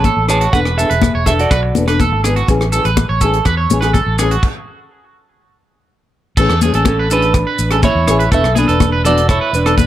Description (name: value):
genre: highlife guitar band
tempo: 123 BPM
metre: 4/4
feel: straight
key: A major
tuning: A4 = 440 Hz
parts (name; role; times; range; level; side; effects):
- semi-hollow electric guitar; melody; 0.0-1.8, 6.9-9.9 s; C#4 to A5; -17 LUFS; right 2 dB; none
- nylon-string guitar; accompaniment; 0.0-9.8 s; E3 to A4; -20 LUFS; left 4 dB; none
- electric guitar at the edge of break-up; arpeggios; 0.0-9.9 s; F#4 to C#5; -18 LUFS; right 4 dB; lush chorus
- fingered electric bass; bass; 0.0-9.8 s; E1 to E2; -17 LUFS; equal; none
- tight funk drum kit; drums; 0.0-9.9 s; crash cymbal, hi-hat, kick drum, rim click; -18 LUFS; equal; none
- congas; percussion; 0.0-9.9 s; none; -20 LUFS; left 6 dB; none
- maracas; percussion; 0.0-9.9 s; none; -27 LUFS; left 5 dB; none
room: light reverb, small room ambience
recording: none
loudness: -11 LUFS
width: side -12 dB against mid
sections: 0.0-6.4 A section; 6.4-9.9 B section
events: stop 4.4-6.4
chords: 0.0 Amaj7; 0.5 E7sus4; 2.5 Amaj7; 4.4 N.C.; 6.4 Amaj7; 8.3 E7sus4